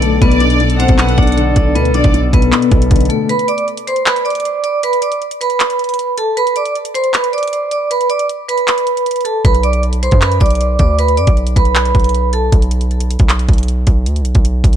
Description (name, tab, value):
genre	hip hop, trap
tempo	156 BPM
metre	4/4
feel	half-time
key	B phrygian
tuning	A4 = 440 Hz
part	vibraphone with medium hard mallets	melody	0.0-12.5 s	A3 to D6	-15 LUFS	right 1 dB	ping-pong delay
part	warm studio violin section	second line	0.0-2.1 s	D5 to F#5	-21 LUFS	left 1 dB	ping-pong delay
part	felt-muted upright piano	accompaniment	0.0-3.3 s	B2 to D3	-18 LUFS	left 5 dB	none
part	mellow brass ensemble	sustained chords	0.0-3.3 s	D3 to A4	-24 LUFS	right 2 dB	none
part	distorted 808-style bass	bass	0.0-3.1, 9.4-14.8 s	B1 to F#2	-15 LUFS	equal	distortion
part	trap drum kit	drums	0.0-14.8 s	handclaps, hi-hat, kick drum	-14 LUFS	equal	vintage 12-bit sampler grit
room	small room ambience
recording	none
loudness	-11 LUFS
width	side -10 dB against mid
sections	0.0-3.3 A section; 3.3-14.8 B section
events	break 3.3-9.4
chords	0.0 Bm7; 3.3 Bm; 12.5 N.C.